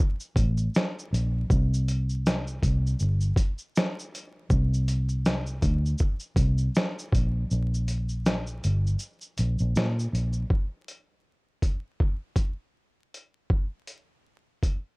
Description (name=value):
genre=lo-fi hip hop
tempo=80 BPM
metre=4/4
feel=swing 57% on 16ths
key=unclear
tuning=A4 = 440 Hz
part: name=dusty soul sampler-style drum kit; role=drums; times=0.0-14.8 s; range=hi-hat, kick drum, shaker, snare drum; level=-25 LUFS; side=equal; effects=none
part: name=vintage muted fingered electric bass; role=bass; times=0.4-10.4 s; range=G1 to Bb2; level=-25 LUFS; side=equal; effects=none
room=little or no reverb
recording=dry, gritty hardware recording, vinyl crackle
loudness=-24 LUFS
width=side -29 dB against mid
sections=0.0-10.5 A section; 10.5-15.0 B section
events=kick muted 7.5-10.5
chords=none